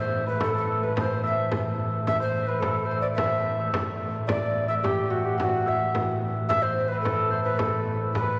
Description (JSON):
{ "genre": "medieval dance", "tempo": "108 BPM", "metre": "2/4", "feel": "straight", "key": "A dorian", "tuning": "A4 = 439 Hz", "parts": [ { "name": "mellow bass recorder", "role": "melody", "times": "0.0-8.4 s", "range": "F#4 to E5", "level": "-31 LUFS", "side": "equal", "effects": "none" }, { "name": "hammered dulcimer", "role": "second line", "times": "0.0-8.4 s", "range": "A4 to G5", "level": "-30 LUFS", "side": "equal", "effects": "none" }, { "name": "chamber organ, flutes", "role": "drone", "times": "0.0-8.4 s", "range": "A2 to E3", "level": "-33 LUFS", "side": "equal", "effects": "none" }, { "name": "frame drum", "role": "percussion", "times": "0.4-8.4 s", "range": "none", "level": "-33 LUFS", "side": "equal", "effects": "none" } ], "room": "wet church reverb, RT60 3.9 s", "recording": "none", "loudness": "-26 LUFS", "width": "mono", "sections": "0.0-8.1 A section", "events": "none", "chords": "none" }